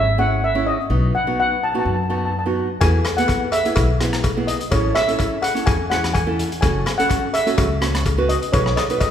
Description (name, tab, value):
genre	calypso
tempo	126 BPM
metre	4/4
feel	straight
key	E major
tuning	A4 = 440 Hz
part	steel pan	melody	0.0-9.1 s	C#5 to A5	-22 LUFS	left 1 dB	none
part	nylon-string guitar	accompaniment	0.0-9.1 s	B3 to B4	-24 LUFS	right 3 dB	none
part	upright bass	bass	0.0-8.7 s	F#1 to F#2	-22 LUFS	left 1 dB	none
part	vintage drum kit	drums	2.8-9.1 s	hi-hat, kick drum, rim click	-22 LUFS	left 1 dB	none
part	cowbell	percussion	2.8-9.1 s	none	-26 LUFS	left 3 dB	none
room	wet recital hall reverb, RT60 1.7 s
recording	recorded in a church or concert hall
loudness	-17 LUFS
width	side -9 dB against mid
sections	0.0-9.1 A section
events	none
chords	0.0 C#m; 0.9 B; 2.8 E; 4.7 Amaj7; 6.6 F#m7; 8.5 B